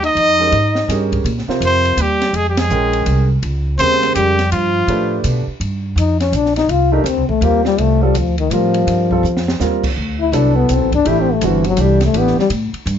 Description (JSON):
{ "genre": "modal jazz", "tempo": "165 BPM", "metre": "3/4", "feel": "swing 64% on 8ths", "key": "unclear", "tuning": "A4 = 440 Hz", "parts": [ { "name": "clear trumpet", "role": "melody", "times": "0.0-5.2 s", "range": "F4 to Eb5", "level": "-16 LUFS", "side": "right 1 dB", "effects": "none" }, { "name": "mellow trombone", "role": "second line", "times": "0.0-12.5 s", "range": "Eb3 to F4", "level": "-17 LUFS", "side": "left 6 dB", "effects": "none" }, { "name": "upright bass", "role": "bass", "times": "0.0-13.0 s", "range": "G1 to B2", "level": "-18 LUFS", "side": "right 1 dB", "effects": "none" }, { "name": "open jazz drum kit", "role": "drums", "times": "0.0-13.0 s", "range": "crash cymbal, hi-hat, kick drum, ride cymbal, snare drum", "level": "-25 LUFS", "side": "right 1 dB", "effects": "none" }, { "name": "clear upright piano", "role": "accompaniment", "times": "0.4-12.4 s", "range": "C3 to G5", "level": "-20 LUFS", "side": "right 5 dB", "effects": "none" } ], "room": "light reverb", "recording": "nothing above 7.6 kHz", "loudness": "-13 LUFS", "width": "side -8 dB against mid", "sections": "0.0-5.6 A section; 5.6-13.0 B section", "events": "band accent 2.5; trombone solo 5.6-13.0; drum fill 9.2-9.6", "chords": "0.0 Fm11; 1.2 Bbm11; 4.5 G7; 5.6 C9sus4; 10.0 D9sus4" }